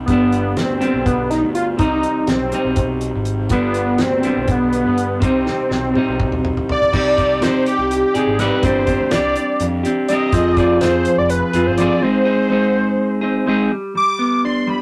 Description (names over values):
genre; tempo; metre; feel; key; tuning
psychedelic rock; 246 BPM (eighths); 7/8; straight; G phrygian dominant; A4 = 439 Hz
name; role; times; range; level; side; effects
clean electric guitar; riff; 0.0-14.8 s; G2 to D5; -21 LUFS; equal; none
fuzz picked electric bass; bass; 0.0-11.9 s; F1 to C3; -27 LUFS; equal; overdrive
unison lead; melody; 0.1-14.8 s; B3 to D6; -21 LUFS; equal; none
damped 70s drum kit; drums; 0.1-11.9 s; crash cymbal, hi-hat, kick drum, snare drum, toms; -24 LUFS; equal; none
room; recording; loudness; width
wet booth ambience, RT60 0.2 s; rough rehearsal-room recording, tube saturation; -17 LUFS; mono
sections
0.0-6.9 A section; 6.9-13.7 B section; 13.7-14.8 C section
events
drum fill 5.5-6.9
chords
0.1 G; 1.8 Cm; 3.5 G; 5.2 Cm; 6.9 Cmadd9; 8.6 Gsus4; 10.3 Fm; 12.0 Ab; 13.7 G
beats
| 0.08 0.32 0.57 0.81 1.06 1.30 1.55 | 1.79 2.04 2.28 2.53 2.77 3.02 3.26 | 3.51 3.75 4.00 4.24 4.49 4.73 4.98 | 5.22 5.46 5.71 5.95 6.20 6.44 6.68 | 6.93 7.17 7.42 7.66 7.90 8.15 8.39 | 8.63 8.88 9.12 9.36 9.60 9.85 10.09 | 10.33 10.57 10.81 11.06 11.30 11.54 11.78 | 12.03 12.27 12.51 12.75 12.99 13.23 13.47 | 13.71 13.96 14.20 14.44 14.68